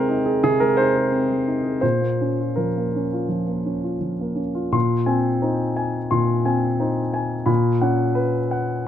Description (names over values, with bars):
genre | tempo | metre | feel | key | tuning
neoclassical minimalist piano | 81-89 BPM | 4/4 | rubato | unclear | A4 = 444 Hz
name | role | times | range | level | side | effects
warm grand piano | solo | 0.0-8.9 s | Bb2 to C6 | -19 LUFS | equal | none
room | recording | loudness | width
light reverb | close, detailed microphones | -19 LUFS | side -10 dB against mid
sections
0.0-4.7 A section; 4.7-8.9 B section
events
none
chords
0.0 Ab/C; 1.8 Bbm; 4.7 Abadd9/Bb; 7.5 Bsus2/Bb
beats
0.42 1.11 | 1.82 2.56 3.29 4.02 | 4.74 5.43 6.11 6.79 | 7.48 8.17 8.86